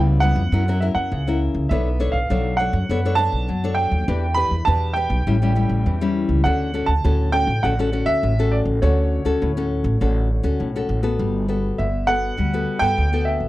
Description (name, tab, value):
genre	samba and choro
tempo	101 BPM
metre	4/4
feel	straight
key	D major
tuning	A4 = 440 Hz
part	nylon-string guitar	accompaniment	0.0-13.5 s	A2 to C#5	-24 LUFS	left 4 dB	none
part	upright bass	bass	0.0-13.5 s	G1 to G2	-21 LUFS	right 1 dB	none
part	clear grand piano	melody	0.2-13.5 s	C#5 to B5	-23 LUFS	right 2 dB	none
room	little or no reverb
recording	dry, close 1970s-style studio recording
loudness	-18 LUFS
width	side -16 dB against mid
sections	0.0-11.2 A section; 11.2-13.5 B section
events	none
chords	0.0 C#m7b5; 0.5 F#7; 1.7 Bm9; 4.1 Em7; 5.3 A7; 6.5 Dmaj7; 11.2 Gmaj9